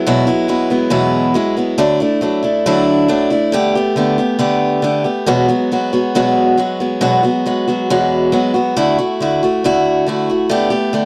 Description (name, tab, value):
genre	rock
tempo	138 BPM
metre	4/4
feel	straight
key	unclear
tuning	A4 = 440 Hz
part	picked steel-string acoustic guitar	solo	0.0-11.1 s	E2 to G4	-15 LUFS	equal	none
room	light reverb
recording	dry, close 1970s-style studio recording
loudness	-15 LUFS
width	mono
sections	0.0-11.1 A section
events	none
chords	0.0 Eadd9; 1.8 Dadd9; 3.5 Gadd9/D; 5.3 Eadd9; 8.8 Dadd9; 10.5 Gadd9/D